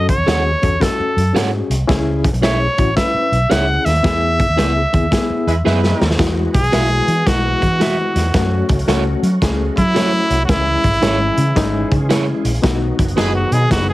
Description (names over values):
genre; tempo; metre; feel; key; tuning
uptempo 1960s-style soul; 112 BPM; 4/4; swing 66% on 8ths; E major; A4 = 440 Hz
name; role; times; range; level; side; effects
bright trumpet; melody; 0.0-13.9 s; E4 to F#5; -18 LUFS; equal; none
bright reed electric piano; accompaniment; 0.0-13.9 s; G#3 to B4; -22 LUFS; left 4 dB; fast tremolo
vintage muted fingered electric bass; bass; 0.0-13.9 s; F#1 to F#3; -18 LUFS; equal; none
crunchy breakbeat drum kit; drums; 0.1-13.9 s; hi-hat, kick drum, snare drum; -19 LUFS; equal; none
electric guitar at the edge of break-up; stabs; 0.3-13.3 s; E4 to F#5; -22 LUFS; right 5 dB; none
warm horn section; second line; 5.5-6.2, 13.2-13.9 s; F#3 to B4; -24 LUFS; right 1 dB; none
bright tonewheel organ; sustained chords; 6.2-13.9 s; D#3 to G#4; -28 LUFS; right 1 dB; slow rotary speaker, chorus vibrato
room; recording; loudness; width
little or no reverb; heavily compressed radio sound, multiband compression; -13 LUFS; side -17 dB against mid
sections
0.0-6.2 A section; 6.2-13.9 B section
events
band accent 4.0-6.2, 12.6-13.9; drum fill 5.7-6.2; trumpet solo 6.2-13.9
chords
0.0 F#m; 1.9 C#m; 4.0 E; 6.2 Eadd9; 8.3 F#m; 10.5 C#m; 12.6 B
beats
0.27 0.81 1.35 | 1.89 2.43 2.97 3.50 | 4.04 4.58 5.12 5.66 | 6.20 6.73 7.27 7.81 | 8.35 8.88 9.42 9.96 | 10.49 11.03 11.57 12.10 | 12.64 13.18 13.71